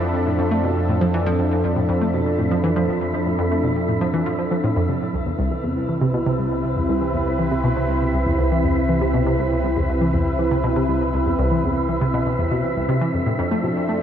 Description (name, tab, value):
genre	ambient, sequencer-driven space music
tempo	120 BPM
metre	4/4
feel	straight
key	C major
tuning	A4 = 444 Hz
part	sweeping resonant pad	sustained chords	0.0-14.0 s	C3 to B4	-22 LUFS	right 1 dB	chorus, shimmer reverb
part	round analog bass	bass	0.0-14.0 s	C2 to F2	-26 LUFS	equal	none
part	wind-like tuned noise texture	texture	0.0-14.0 s	E4 to E5	-28 LUFS	right 1 dB	built-in reverb, shimmer reverb
part	analog pluck	riff	0.1-14.0 s	C2 to A3	-22 LUFS	equal	chorus, tape echo, shimmer reverb
room	moderate plate reverb, RT60 2.6 s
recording	dark, warm production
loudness	-18 LUFS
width	side -9 dB against mid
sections	0.0-14.0 A section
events	none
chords	0.0 F6; 5.0 Cmaj7; 13.0 F6